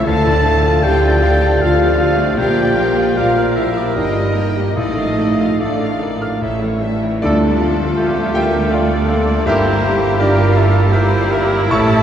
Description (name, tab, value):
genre	classical, romantic movement for piano and orchestra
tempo	71-85 BPM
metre	3/4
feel	rubato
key	D minor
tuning	A4 = 441 Hz
part	clear chamber violin section	melody	0.0-12.0 s	G4 to G5	-31 LUFS	left 4 dB	none
part	clear grand piano	melody	0.0-12.0 s	D2 to F6	-19 LUFS	left 1 dB	none
part	clear oboe	second line	0.0-12.0 s	F4 to A5	-24 LUFS	right 1 dB	none
part	mellow hollow silver concert flute	second line	0.0-12.0 s	F4 to F5	-24 LUFS	left 1 dB	none
part	rich chamber violin section	second line	0.0-12.0 s	A4 to A5	-28 LUFS	left 2 dB	none
part	warm clarinet	second line	0.0-12.0 s	E4 to C#5	-28 LUFS	left 1 dB	none
part	rich chamber viola section	accompaniment	0.0-12.0 s	D3 to Bb4	-25 LUFS	right 2 dB	none
part	warm bassoon	accompaniment	0.0-12.0 s	F3 to Bb3	-25 LUFS	right 1 dB	none
part	mellow French horn section	sustained chords	0.0-12.0 s	A3 to A4	-20 LUFS	left 2 dB	none
part	clear chamber double bass section	bass	0.1-12.0 s	G1 to D2	-21 LUFS	right 2 dB	none
part	warm studio cello section	bass	0.1-12.0 s	D2 to D3	-22 LUFS	right 2 dB	none
part	cymbal swell and tam-tam	percussion	4.8-10.2 s	none	-29 LUFS	left 2 dB	none
part	clear trumpet section	stabs	7.2-12.0 s	G4 to A4	-29 LUFS	right 1 dB	none
room	wet cathedral reverb, RT60 4.2 s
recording	dark, warm production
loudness	-13 LUFS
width	side -9 dB against mid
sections	0.0-7.2 A section; 7.2-12.0 B section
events	band accent 7.2-8.0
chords	0.1 Dm; 2.4 Bb6; 4.0 Eb/G; 4.8 Dm/A; 6.4 A; 7.2 Dm; 9.5 Edim/G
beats	| 0.06 0.83 1.60 | 2.38 3.17 3.96 | 4.77 5.60 6.42 | 7.23 7.98 8.72 | 9.47 10.20 10.94 | 11.71